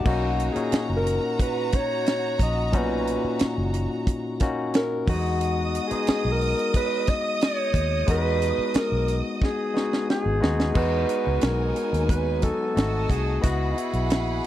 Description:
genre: lush 1970s-style soul.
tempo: 90 BPM.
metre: 4/4.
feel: straight.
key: unclear.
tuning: A4 = 439 Hz.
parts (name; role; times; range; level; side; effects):
growling alto saxophone; melody; 0.0-14.4 s; D#4 to D#5; -27 LUFS; right 1 dB; none.
clear studio violin section; second line; 0.0-14.5 s; B3 to D#6; -33 LUFS; right 2 dB; none.
barky tine electric piano; accompaniment; 0.0-14.5 s; A#2 to D#5; -28 LUFS; left 3 dB; overdrive.
vintage muted fingered electric bass; bass; 0.1-14.4 s; F#1 to E2; -26 LUFS; equal; none.
tight funk drum kit; drums; 0.1-14.5 s; crash cymbal, hi-hat, kick drum, snare drum; -25 LUFS; right 1 dB; none.
room: studio ambience.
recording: dry, close 1970s-style studio recording.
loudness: -22 LUFS.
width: side -12 dB against mid.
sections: 0.1-10.8 A section; 10.8-14.5 B section.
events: drum fill 9.4-10.8.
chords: 0.1 Bmaj7; 5.1 Emaj7; 10.8 Emaj9; 12.8 G#7b9; 13.4 C#m11.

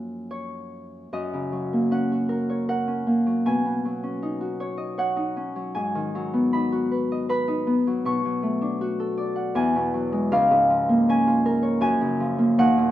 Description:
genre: classical, solo harp piece.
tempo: 78 BPM.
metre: 3/4.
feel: rubato.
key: F# major.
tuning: A4 = 440 Hz.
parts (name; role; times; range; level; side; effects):
Celtic harp; solo; 0.0-12.9 s; Db2 to C#6; -21 LUFS; equal; none.
room: wet recital hall reverb, RT60 1.5 s.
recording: none.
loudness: -21 LUFS.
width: side -13 dB against mid.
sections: 0.0-1.1 A section; 1.1-12.9 B section.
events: none.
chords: 0.0 F#maj7; 1.1 F#6; 3.5 B69; 5.8 G#m7; 8.1 Bm9; 9.6 Eadd9; 10.3 Db6; 11.8 Gbmaj7.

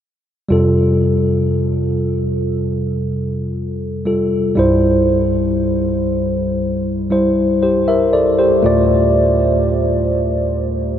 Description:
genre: pop.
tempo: 59 BPM.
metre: 4/4.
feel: straight.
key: F major.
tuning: A4 = 440 Hz.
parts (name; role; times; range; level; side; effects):
tine electric piano; accompaniment; 0.5-11.0 s; C2 to E5; -14 LUFS; equal; none.
room: wet huge ambient reverb, RT60 7.5 s.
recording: dreamy mix soaked in reverb.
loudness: -14 LUFS.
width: side -10 dB against mid.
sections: 0.5-11.0 A section.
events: none.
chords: 0.5 Fadd9; 4.6 C; 8.6 Dm.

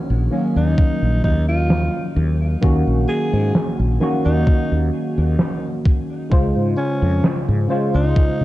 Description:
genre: vaporwave.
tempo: 65 BPM.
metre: 4/4.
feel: swing 53% on 16ths.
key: unclear.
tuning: A4 = 440 Hz.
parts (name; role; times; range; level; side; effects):
tine electric piano; accompaniment; 0.0-8.4 s; Db3 to C5; -21 LUFS; equal; analog chorus.
mellow fretless electric bass; bass; 0.1-8.4 s; Bb1 to Db3; -18 LUFS; equal; tube saturation.
growling alto saxophone; melody; 0.6-8.4 s; Db4 to Ab4; -26 LUFS; equal; tape echo.
electronic kick drum; drums; 0.8-8.4 s; none; -15 LUFS; equal; none.
snare drum; drums; 1.7-7.4 s; none; -22 LUFS; equal; low-pass filter on hats, low-pass filter on snare, low-pass filter on room.
room: studio reverb.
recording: dark, warm production, cassette tape.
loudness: -16 LUFS.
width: side -16 dB against mid.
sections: 0.0-8.4 A section.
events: none.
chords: 0.0 Ebm7; 6.3 Dbmaj7.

